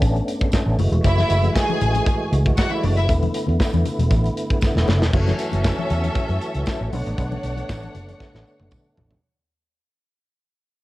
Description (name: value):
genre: disco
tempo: 117 BPM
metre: 4/4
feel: straight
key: F# minor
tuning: A4 = 441 Hz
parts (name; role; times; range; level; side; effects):
- tonewheel organ; sustained chords; 0.0-9.2 s; D3 to F#4; -26 LUFS; equal; overdrive, chorus vibrato, slow rotary speaker, cassette tape, plate reverb
- vintage muted fingered electric bass; bass; 0.0-9.1 s; E1 to F#2; -20 LUFS; equal; none
- modern studio drum kit; drums; 0.0-9.2 s; crash cymbal, hi-hat, kick drum, snare drum, toms; -22 LUFS; equal; cassette tape
- tambourine; percussion; 0.0-8.8 s; none; -45 LUFS; right 11 dB; none
- congas; percussion; 0.2-9.1 s; none; -30 LUFS; left 8 dB; none
- clear studio string section; second line; 1.0-9.2 s; C#4 to G#5; -26 LUFS; equal; cassette tape, plate reverb
room: light reverb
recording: home recording on cassette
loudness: -18 LUFS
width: side -17 dB against mid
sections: 0.0-5.1 A section; 5.1-9.2 B section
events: drum fill 4.6-5.1, 8.2-9.2; fade-out 5.1-9.2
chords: 0.0 Bm9; 0.8 F#m9; 3.1 E7sus4; 5.1 F#m7; 6.9 Bm9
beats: 0.02 0.53 | 1.04 1.55 2.06 2.58 | 3.09 3.60 4.11 4.62 | 5.13 5.64 6.16 6.67 | 7.18 7.69 8.20 8.71